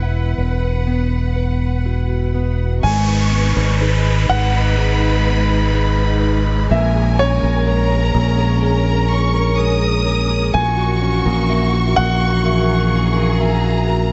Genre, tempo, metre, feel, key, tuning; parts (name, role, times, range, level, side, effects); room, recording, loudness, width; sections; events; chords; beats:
pop ballad; 62 BPM; 4/4; straight; G# minor; A4 = 441 Hz
warm baby grand piano; melody; 0.0-14.1 s; C#5 to G#5; -26 LUFS; equal
bell-like tine electric piano; accompaniment; 0.0-14.1 s; E3 to E5; -27 LUFS; equal; ensemble chorus
warm studio string section; sustained chords; 0.0-14.1 s; E3 to F#5; -29 LUFS; equal
fingerpicked plugged-in steel-string acoustic guitar; arpeggios; 0.0-14.1 s; G#2 to B4; -27 LUFS; equal; tape echo
fingered electric bass; bass; 0.0-14.1 s; E1 to A#1; -19 LUFS; equal
warm studio violin section; second line; 2.8-14.1 s; G#5 to D#6; -27 LUFS; equal
downlifter; sound effects; 2.8-10.5 s; -30 LUFS; equal
light reverb; nothing above 7.9 kHz; -17 LUFS; mono
0.0-2.8 A section; 2.8-14.1 B section
0.0 Esus2; 2.8 G#m; 6.7 A#m7; 10.5 F#7/A#
0.87 1.85 | 2.84 3.81 4.78 5.74 | 6.71 7.67 8.63 9.59 | 10.54 11.49 12.45 13.40